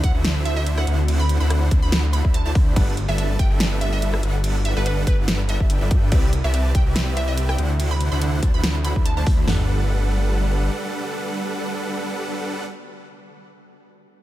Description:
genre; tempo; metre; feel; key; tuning
future bass; 143 BPM; 4/4; swing 54% on 16ths, half-time; G major; A4 = 439 Hz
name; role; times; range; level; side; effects
glassy wavetable pluck; melody; 0.0-9.2 s; B4 to B5; -30 LUFS; right 2 dB; chorus, sidechain pumping, ping-pong delay
shimmering ambient pad; sustained chords; 0.0-12.6 s; C3 to B4; -35 LUFS; right 1 dB; none
supersaw chords; riff; 0.0-12.6 s; D3 to B5; -28 LUFS; right 1 dB; sidechain pumping
wide detuned saw bass; bass; 0.0-10.7 s; G1 to G2; -21 LUFS; equal; chorus, sidechain pumping
big-room dance drum kit; drums; 0.0-9.6 s; kick drum, snare drum, toms; -19 LUFS; equal; none
big-room dance drum kit; drums; 0.0-9.4 s; crash cymbal, hi-hat, rim click, snare drum; -27 LUFS; equal; none
room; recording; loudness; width
little or no reverb; none; -18 LUFS; side -14 dB against mid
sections
0.0-9.5 A section; 9.5-12.8 B section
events
drop 0.0-9.5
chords
0.0 D7; 2.8 Gmaj7; 6.1 Cmaj7; 7.8 D7; 9.5 Gmaj7

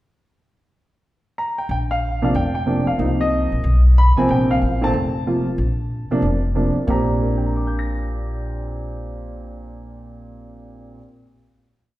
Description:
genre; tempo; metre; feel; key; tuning
jazz; 185 BPM; 4/4; swing 63% on 8ths; Bb major; A4 = 439 Hz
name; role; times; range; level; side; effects
warm baby grand piano; melody; 1.4-11.2 s; Bb2 to Bb6; -21 LUFS; equal; none
upright bass; bass; 1.7-10.9 s; F1 to C2; -20 LUFS; equal; none
room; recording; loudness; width
wet recital hall reverb, RT60 1.4 s; recorded in a church or concert hall; -17 LUFS; side -16 dB against mid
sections
0.4-1.7 pickup bar; 1.7-6.9 A section; 6.9-9.5 final chord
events
none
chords
0.4 N.C.; 1.7 Bb69; 3.0 Cm7; 3.6 Abm/Cb (rootless); 4.3 Bbmaj7sus2; 6.9 Bb69

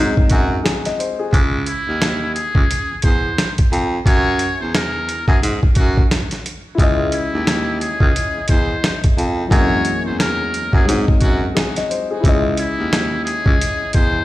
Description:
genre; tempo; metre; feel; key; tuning
hip hop, boom-bap hip-hop; 88 BPM; 4/4; swing 61% on 16ths; C# harmonic minor; A4 = 440 Hz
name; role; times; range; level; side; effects
dark concert grand piano; accompaniment; 0.0-1.4, 6.7-14.2 s; F#2 to D#5; -22 LUFS; left 4 dB; high-pass filter, low-pass filter
breathy baritone saxophone; bass; 0.0-14.2 s; C#2 to G#2; -20 LUFS; right 1 dB; none
boom bap sampler-style drum kit; drums; 0.2-14.1 s; hi-hat, kick drum, rim click, snare drum; -16 LUFS; equal; none
trumpet with metal mute; melody; 0.3-14.2 s; E4 to C#5; -23 LUFS; left 1 dB; high-pass filter, low-pass filter, ping-pong delay
room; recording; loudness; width
little or no reverb; played on a big sound system in a bare room, large studio reverb; -15 LUFS; side -16 dB against mid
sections
0.0-14.2 A section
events
none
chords
0.0 G#7; 1.3 C#madd9; 4.1 Esus2; 5.4 F#sus2; 6.8 C#madd9; 9.5 F#7; 10.9 G#7; 12.2 C#madd9

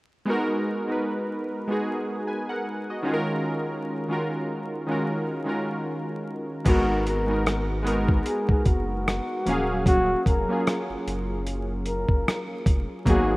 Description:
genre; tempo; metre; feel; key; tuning
lo-fi hip hop; 75 BPM; 4/4; swing 57% on 16ths; Eb minor; A4 = 440 Hz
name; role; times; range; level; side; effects
warm analog keys; accompaniment; 0.3-13.4 s; Eb3 to Ab5; -26 LUFS; equal; chorus, cassette tape, low-pass filter
breathy flugelhorn; melody; 6.7-13.4 s; Gb4 to Bb4; -28 LUFS; left 1 dB; low-pass filter
saturated sub bass; bass; 6.7-13.4 s; Eb1 to Ab1; -29 LUFS; equal; none
dusty soul sampler-style drum kit; drums; 6.7-13.3 s; crash cymbal, hi-hat, kick drum, rim click; -24 LUFS; equal; none
room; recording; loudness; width
light reverb, digital ambience; rough home demo mix, vinyl crackle; -23 LUFS; side -21 dB against mid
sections
0.3-6.7 A section; 6.7-13.4 B section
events
none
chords
0.3 Abm7; 3.1 Ebm11; 6.7 Abm7; 9.5 Ebm11

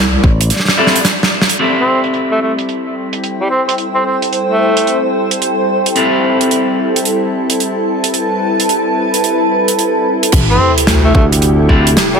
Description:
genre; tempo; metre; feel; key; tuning
glitch hop; 110 BPM; 4/4; swing 64% on 16ths; A minor; A4 = 440 Hz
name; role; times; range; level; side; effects
wobble bass; bass; 0.0-0.2, 10.3-11.1 s; A1 to D2; -13 LUFS; equal; chorus
granular cloud pad; texture; 0.0-12.2 s; C4 to A5; -17 LUFS; equal; built-in reverb, sidechain pumping
modern bright fingered electric bass; bass; 0.2-0.5, 11.1-11.9 s; A1 to D2; -12 LUFS; equal; none
electronic kick drum; drums; 0.2-0.4, 10.3-11.8 s; none; -10 LUFS; equal; none
gated 80s drum kit; drums; 0.4-12.2 s; crash cymbal, hi-hat, rim click, snare drum; -15 LUFS; right 2 dB; low-pass filter on hats, low-pass filter on cymbals, low-pass filter on snare, low-pass filter on room
electric guitar at the edge of break-up; stabs; 0.8-11.9 s; C4 to A4; -17 LUFS; left 2 dB; vintage 12-bit sampler grit, sidechain pumping, tape echo
warm analog pad; sustained chords; 2.4-12.2 s; C3 to A4; -20 LUFS; left 1 dB; chorus, sidechain pumping
warm tenor saxophone; melody; 1.8-5.0, 10.5-12.2 s; G3 to C4; -17 LUFS; right 1 dB; tape echo
sub drop; sound effects; 10.3-12.2 s; none; -20 LUFS; equal; none
room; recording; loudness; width
moderate lush hall reverb, RT60 2.1 s; none; -11 LUFS; side -6 dB against mid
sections
0.0-1.6 A section; 1.6-10.3 B section; 10.3-12.2 C section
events
drum fill 0.5-1.6; filter sweep on analog synth pad 1.6-10.3; drop 10.3-12.2; impact 10.3-12.2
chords
0.0 Am; 1.6 Am7

